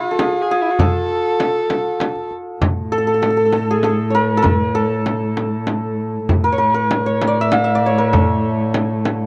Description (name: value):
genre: Persian modal ensemble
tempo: 65 BPM (dotted quarters)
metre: 6/8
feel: straight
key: A dastgah chahargah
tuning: A4 = 440 Hz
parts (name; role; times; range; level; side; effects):
- santur; melody; 0.0-9.3 s; F4+45c to F5+45c; -20 LUFS; equal; none
- rich kamancheh; second line; 0.0-2.3 s; E4 to A4; -24 LUFS; equal; none
- frame drum; percussion; 0.2-9.2 s; none; -25 LUFS; equal; none
- tombak; percussion; 0.2-9.2 s; none; -22 LUFS; equal; none
- warm cello; drone; 2.6-9.3 s; A2; -23 LUFS; equal; none
room: moderate booth ambience, RT60 0.2 s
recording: dry, close 1970s-style studio recording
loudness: -18 LUFS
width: mono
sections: 0.0-2.6 A section; 2.6-9.3 B section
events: none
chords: none